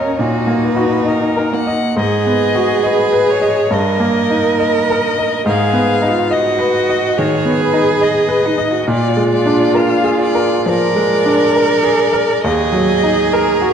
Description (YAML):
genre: classical, slow romantic movement for piano trio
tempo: 69 BPM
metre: 4/4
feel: uneven beats, rubato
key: Eb minor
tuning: A4 = 440 Hz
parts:
  - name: rich violin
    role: melody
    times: 0.0-13.7 s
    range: Gb4 to Gb5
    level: -20 LUFS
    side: left 8 dB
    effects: none
  - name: rich cello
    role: second line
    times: 0.0-13.7 s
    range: Bb3 to Bb4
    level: -16 LUFS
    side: right 4 dB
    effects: none
  - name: bright baby grand piano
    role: accompaniment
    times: 0.0-13.7 s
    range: Eb2 to Eb5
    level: -16 LUFS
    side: left 1 dB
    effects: none
room: wet concert hall reverb, RT60 2.3 s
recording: dark, warm production, nothing above 10.5 kHz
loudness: -12 LUFS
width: side -8 dB against mid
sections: 0.0-13.7 A section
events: none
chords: 0.0 Ebm; 2.0 Abm7; 3.7 Eb/G; 5.5 Abm; 8.9 Bb7; 12.5 Ebm